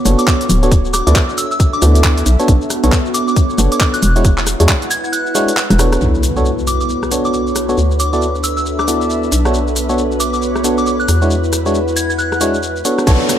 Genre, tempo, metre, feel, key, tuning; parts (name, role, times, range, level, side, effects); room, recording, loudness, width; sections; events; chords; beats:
UK garage, two-step garage; 136 BPM; 4/4; swing 61% on 16ths; B minor; A4 = 438 Hz
airy breathy pad; texture; 0.0-13.1 s; B3 to F#5; -21 LUFS; equal; chorus, sidechain pumping
FM electric piano; stabs; 0.1-13.4 s; G#3 to D5; -19 LUFS; equal; chorus
hollow knocking FM bass; bass; 0.1-13.2 s; D1 to E2; -16 LUFS; equal; sidechain pumping
garage drum kit; drums; 0.1-13.4 s; crash cymbal, handclaps, hi-hat, rim click, shaker; -20 LUFS; left 1 dB
soft synth bell; melody; 0.2-12.8 s; D6 to G#6; -22 LUFS; equal; chorus, dub echo
electronic kick drum; drums; 0.3-4.8, 13.1-13.2 s; -15 LUFS; equal
ethereal airy pad; sustained chords; 6.9-13.4 s; B4 to E5; -28 LUFS; right 3 dB; ensemble chorus, built-in reverb, sidechain pumping
impact and downlifter; sound effects; 6.0-7.8, 13.1-13.4 s; -21 LUFS; equal
light reverb; -12 LUFS; side -10 dB against mid
0.0-6.0 A section; 6.0-13.1 B section
kick drops out 5.1-6.0; drum fill 5.7-6.0; band accent 5.9; impact 6.0-7.8
0.0 D69; 2.3 Bm9; 4.0 E13; 6.0 Bm9; 7.8 D69; 9.3 Bm9; 11.1 E13
0.28 | 0.72 1.16 1.60 2.04 | 2.48 2.92 3.36 3.81 | 4.25 4.69 5.13 5.57 | 6.01 6.45 6.89 7.33 | 7.78 8.22 8.66 9.10 | 9.54 9.98 10.42 10.86 | 11.31 11.75 12.19 12.63 | 13.07